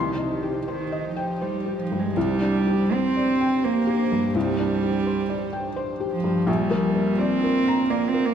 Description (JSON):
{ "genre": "neoclassical piano and strings", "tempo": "77-86 BPM", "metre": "3/4", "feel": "rubato", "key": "C minor", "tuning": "A4 = 440 Hz", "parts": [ { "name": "warm cello", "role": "second line", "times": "0.0-8.3 s", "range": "C3 to C4", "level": "-23 LUFS", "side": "right 2 dB", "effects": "none" }, { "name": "felt-muted upright piano", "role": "accompaniment", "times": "0.0-8.3 s", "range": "Bb1 to C6", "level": "-26 LUFS", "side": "left 3 dB", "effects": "none" }, { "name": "airy breathy pad", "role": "sustained chords", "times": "0.0-8.3 s", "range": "D4 to C5", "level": "-33 LUFS", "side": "right 2 dB", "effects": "chorus" } ], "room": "wet recital hall reverb, RT60 1.5 s", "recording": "none", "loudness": "-21 LUFS", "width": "side -8 dB against mid", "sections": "0.0-2.2 A section; 2.2-8.3 B section", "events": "none", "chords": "0.0 Cm; 2.2 Csus2; 6.5 Bb", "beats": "0.69 1.42 | 2.16 2.92 3.64 | 4.35 5.06 5.77 | 6.48 7.20 7.91" }